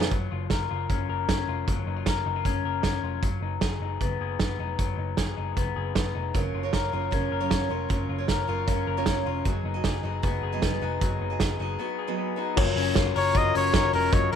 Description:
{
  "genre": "jangly indie pop",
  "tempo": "154 BPM",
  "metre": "4/4",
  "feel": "straight",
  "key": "F# major",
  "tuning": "A4 = 440 Hz",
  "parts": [
    { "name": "mellow reed electric piano", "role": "accompaniment", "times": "0.0-0.1, 12.6-14.4 s", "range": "E#4 to A#5", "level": "-29 LUFS", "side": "left 14 dB", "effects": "none" },
    { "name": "picked steel-string acoustic guitar", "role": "accompaniment", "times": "0.0-0.1, 6.3-12.6 s", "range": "F#3 to D#5", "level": "-32 LUFS", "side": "right 11 dB", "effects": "none" },
    { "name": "electric guitar through a small old amp", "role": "arpeggios", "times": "0.0-14.4 s", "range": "C#3 to A#4", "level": "-30 LUFS", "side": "left 13 dB", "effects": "tape echo" },
    { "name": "vintage muted picked electric bass", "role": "bass", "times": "0.0-14.4 s", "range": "E#1 to F#1", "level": "-31 LUFS", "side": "equal", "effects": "none" },
    { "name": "loose indie drum kit", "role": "drums", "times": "0.0-14.4 s", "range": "crash cymbal, hi-hat, kick drum, snare drum", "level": "-27 LUFS", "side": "right 2 dB", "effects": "none" },
    { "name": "clear trumpet", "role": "melody", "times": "13.2-14.4 s", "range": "A#4 to D#5", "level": "-25 LUFS", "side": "right 1 dB", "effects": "none" }
  ],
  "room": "moderate spring reverb, RT60 1.3 s, small room reverb",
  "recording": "1960s-style stereo with parts hard left and right",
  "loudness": "-24 LUFS",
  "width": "side -8 dB against mid",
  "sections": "0.1-12.6 A section; 12.6-14.4 B section",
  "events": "break 11.8-12.6",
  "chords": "0.1 F#maj7; 3.2 G#m7; 6.3 F#maj7; 9.5 G#m7; 12.6 F#maj7"
}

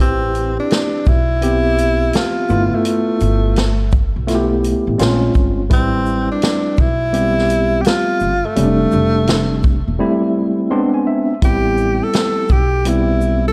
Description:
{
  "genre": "hip hop, jazz-hop",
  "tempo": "84 BPM",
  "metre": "4/4",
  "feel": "swing 65% on 16ths",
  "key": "A minor",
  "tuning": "A4 = 441 Hz",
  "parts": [
    { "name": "breathy tenor saxophone", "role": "melody", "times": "0.0-13.5 s", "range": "A3 to A4", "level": "-22 LUFS", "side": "equal", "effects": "tape echo" },
    { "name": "tine electric piano", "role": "accompaniment", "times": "0.0-13.5 s", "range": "G3 to C6", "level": "-20 LUFS", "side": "equal", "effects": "overdrive" },
    { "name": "upright bass", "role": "bass", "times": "0.0-13.5 s", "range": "E1 to B1", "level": "-22 LUFS", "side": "equal", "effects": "none" },
    { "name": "vintage drum kit", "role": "drums", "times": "0.3-13.4 s", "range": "hi-hat, kick drum, shaker, snare drum", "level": "-19 LUFS", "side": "equal", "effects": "none" }
  ],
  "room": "light reverb, studio reverb",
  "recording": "dark, warm production",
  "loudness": "-16 LUFS",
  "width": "mono",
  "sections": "0.0-13.5 A section",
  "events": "silent gap 10.0-11.4; tine electric piano fill 10.4-11.4",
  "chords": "0.0 Am9; 2.5 G13; 5.0 Bbm9; 5.7 Am9; 8.6 F69; 10.7 E7b13; 11.4 Am9"
}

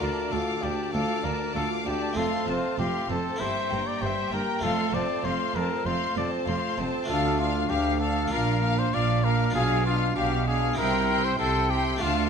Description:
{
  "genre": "classical, baroque-style concerto movement with solo episodes",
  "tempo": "98 BPM",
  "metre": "4/4",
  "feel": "straight",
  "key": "unclear",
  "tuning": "A4 = 440 Hz",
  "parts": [
    { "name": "clear trumpet", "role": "melody", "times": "0.0-12.3 s", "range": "F4 to D5", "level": "-29 LUFS", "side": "left 3 dB", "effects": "none" },
    { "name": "warm symphonic violin section", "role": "melody", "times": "0.0-12.3 s", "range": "F5 to D6", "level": "-36 LUFS", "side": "left 3 dB", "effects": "none" },
    { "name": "warm symphonic violin section", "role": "second line", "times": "0.0-12.3 s", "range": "C5 to G5", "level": "-31 LUFS", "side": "left 3 dB", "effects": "none" },
    { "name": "harpsichord", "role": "accompaniment", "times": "0.0-12.3 s", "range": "D2 to G4", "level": "-33 LUFS", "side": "right 1 dB", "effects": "none" },
    { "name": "rich chamber viola section", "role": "accompaniment", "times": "0.0-12.3 s", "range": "G3 to F4", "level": "-33 LUFS", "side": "right 2 dB", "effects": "none" },
    { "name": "clear studio double bass section", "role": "bass", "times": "0.0-12.3 s", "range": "F1 to D2", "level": "-31 LUFS", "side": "right 3 dB", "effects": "none" },
    { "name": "warm studio cello section", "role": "bass", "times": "0.0-12.3 s", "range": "D2 to D3", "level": "-32 LUFS", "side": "right 3 dB", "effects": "none" }
  ],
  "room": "wet recital hall reverb, RT60 1.6 s",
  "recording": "none",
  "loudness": "-24 LUFS",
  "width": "side -6 dB against mid",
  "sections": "0.0-12.3 A section",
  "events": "none",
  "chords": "0.0 Dm; 2.2 F; 3.4 Edim/G; 4.6 F; 7.1 Dm; 8.3 Bb; 9.5 Bdim; 10.8 C"
}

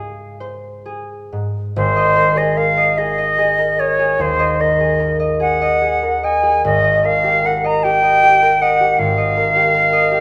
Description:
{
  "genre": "classical, impressionist duo for flute and harp",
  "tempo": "43-53 BPM (dotted quarters)",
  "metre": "12/8",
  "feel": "rubato",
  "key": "Ab major",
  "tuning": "A4 = 435 Hz",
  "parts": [
    { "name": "silver concert flute", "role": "melody", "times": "0.0-10.2 s", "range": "C5 to Bb5", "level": "-17 LUFS", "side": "equal", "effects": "none" },
    { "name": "concert harp", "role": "accompaniment", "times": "0.0-10.2 s", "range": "Ab1 to Eb5", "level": "-21 LUFS", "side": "equal", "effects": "none" }
  ],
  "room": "wet recital hall reverb, RT60 1.6 s",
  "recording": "none",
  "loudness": "-15 LUFS",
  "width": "mono",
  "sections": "0.0-1.7 A section; 1.7-10.2 B section",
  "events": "none",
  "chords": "0.0 Dbmaj7 (rootless); 1.7 Abadd9; 6.6 Cm7/Ab (rootless)"
}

